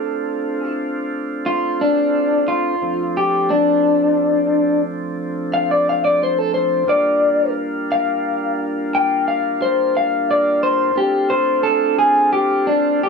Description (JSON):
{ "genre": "blues", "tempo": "59 BPM (dotted quarters)", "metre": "12/8", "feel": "straight", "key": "D minor", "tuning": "A4 = 439 Hz", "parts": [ { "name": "electric guitar through a small old amp", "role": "melody", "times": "0.0-13.1 s", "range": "D4 to G5", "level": "-16 LUFS", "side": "left 1 dB", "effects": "none" }, { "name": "tonewheel organ", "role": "sustained chords", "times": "0.0-13.1 s", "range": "F3 to F4", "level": "-23 LUFS", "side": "right 1 dB", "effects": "slow rotary speaker" } ], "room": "wet studio reverb, RT60 0.7 s", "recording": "band playing live in one room", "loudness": "-16 LUFS", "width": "side -5 dB against mid", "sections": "0.0-13.1 A section", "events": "clean electric guitar solo 0.0-13.1", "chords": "0.0 Dm7; 6.9 Gm7; 11.0 Dm7" }